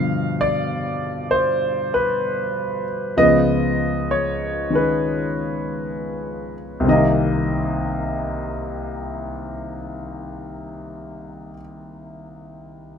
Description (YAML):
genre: solo jazz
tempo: 65 BPM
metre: 4/4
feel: swing 67% on 8ths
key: unclear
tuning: A4 = 440 Hz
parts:
  - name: warm grand piano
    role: solo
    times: 0.0-13.0 s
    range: C2 to F5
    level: -20 LUFS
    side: left 1 dB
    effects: none
room: light reverb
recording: minimal, uncompressed stereo recording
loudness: -19 LUFS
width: side -7 dB against mid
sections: 0.0-6.9 A section; 6.9-10.6 B section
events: none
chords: 0.0 G7; 3.2 Db7; 6.9 Cm7